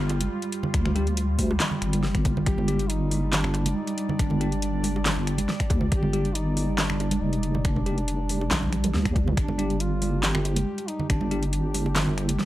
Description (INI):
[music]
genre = deep dubstep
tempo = 139 BPM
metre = 4/4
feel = half-time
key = unclear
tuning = A4 = 440 Hz
[part]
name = deep dark ambient pad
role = sustained chords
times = 0.0-12.5 s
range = G3 to D5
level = -32 LUFS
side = right 1 dB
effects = chorus, built-in reverb
[part]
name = deep soft wobble bass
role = bass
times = 0.0-12.4 s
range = F1 to D2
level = -26 LUFS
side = equal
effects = chorus
[part]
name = deep house drum kit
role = drums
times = 0.1-12.5 s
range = finger snaps, handclaps, hi-hat, snare drum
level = -28 LUFS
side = equal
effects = overdrive
[part]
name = bongos and congas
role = percussion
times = 0.1-12.4 s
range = none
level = -32 LUFS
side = right 3 dB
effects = none
[part]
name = electronic kick drum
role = drums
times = 0.7-11.2 s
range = none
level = -26 LUFS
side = equal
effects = overdrive
[part]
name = bell-like tine electric piano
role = stabs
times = 1.0-11.4 s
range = G3 to G4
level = -36 LUFS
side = left 2 dB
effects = phaser, dub echo
[part]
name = dark duduk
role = melody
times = 2.5-12.2 s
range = D4 to G4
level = -33 LUFS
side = left 1 dB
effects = dub echo
[sound]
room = digital ambience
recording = dry, gritty hardware recording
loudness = -22 LUFS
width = side -15 dB against mid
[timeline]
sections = 0.0-12.5 A section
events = none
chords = 0.0 G5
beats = 0.31 | 0.74 1.17 1.60 2.03 | 2.46 2.90 3.33 3.76 | 4.19 4.62 5.05 5.49 | 5.92 6.35 6.78 7.21 | 7.64 8.08 8.51 8.94 | 9.37 9.80 10.23 10.67 | 11.10 11.53 11.96 12.39